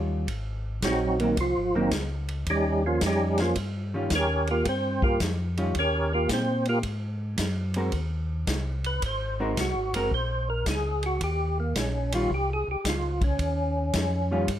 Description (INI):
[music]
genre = soul jazz organ trio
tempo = 110 BPM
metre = 4/4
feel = swing 67% on 8ths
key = Eb mixolydian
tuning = A4 = 444 Hz
[part]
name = vintage hollow-body jazz guitar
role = accompaniment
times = 0.0-14.5 s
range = Eb3 to Bb4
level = -30 LUFS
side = equal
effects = none
[part]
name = mellow tonewheel organ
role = bass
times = 0.0-14.6 s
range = Gb1 to Bb2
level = -29 LUFS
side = equal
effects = slow rotary speaker
[part]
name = vintage drum kit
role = drums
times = 0.3-14.6 s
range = hi-hat, kick drum, ride cymbal, snare drum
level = -31 LUFS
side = equal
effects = none
[part]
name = percussive tonewheel organ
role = melody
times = 0.8-14.5 s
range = Eb3 to Db5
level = -27 LUFS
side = right 1 dB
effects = slow rotary speaker, chorus vibrato
[sound]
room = light reverb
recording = none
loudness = -24 LUFS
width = side -11 dB against mid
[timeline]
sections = 0.0-14.6 A section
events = tonewheel organ solo 0.0-14.6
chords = 0.3 Ab9; 2.5 Eb9; 6.8 Ab9; 11.2 Eb9